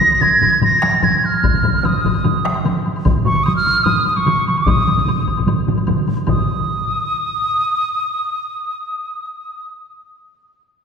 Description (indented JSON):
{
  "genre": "japanese traditional, taiko drum ensemble",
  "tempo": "149 BPM",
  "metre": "4/4",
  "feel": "straight",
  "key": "Eb suspended pentatonic",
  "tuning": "A4 = 440 Hz",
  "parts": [
    { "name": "mellow hollow piccolo", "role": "melody", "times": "0.0-9.7 s", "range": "Db6 to Bb6", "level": "-17 LUFS", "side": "right 1 dB", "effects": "none" },
    { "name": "taiko ensemble", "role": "percussion", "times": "0.0-6.5 s", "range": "none", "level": "-22 LUFS", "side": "right 1 dB", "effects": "none" },
    { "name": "taiko ensemble", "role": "percussion", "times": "0.0-6.7 s", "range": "none", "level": "-22 LUFS", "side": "left 4 dB", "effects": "none" },
    { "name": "taiko ensemble", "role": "percussion", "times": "0.0-6.6 s", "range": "none", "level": "-22 LUFS", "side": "right 4 dB", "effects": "none" },
    { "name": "woodblock", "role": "percussion", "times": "0.0-6.5 s", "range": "none", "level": "-32 LUFS", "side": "left 2 dB", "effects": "none" },
    { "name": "solo taiko drums", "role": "percussion", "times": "1.4-6.5 s", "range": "none", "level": "-23 LUFS", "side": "left 2 dB", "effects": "none" }
  ],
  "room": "wet concert hall reverb, RT60 2.2 s",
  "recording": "heard from further back in the room",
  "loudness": "-14 LUFS",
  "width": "side -6 dB against mid",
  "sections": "0.0-6.3 A section; 6.3-9.5 B section",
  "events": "speeding up 0.0-9.5",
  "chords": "none"
}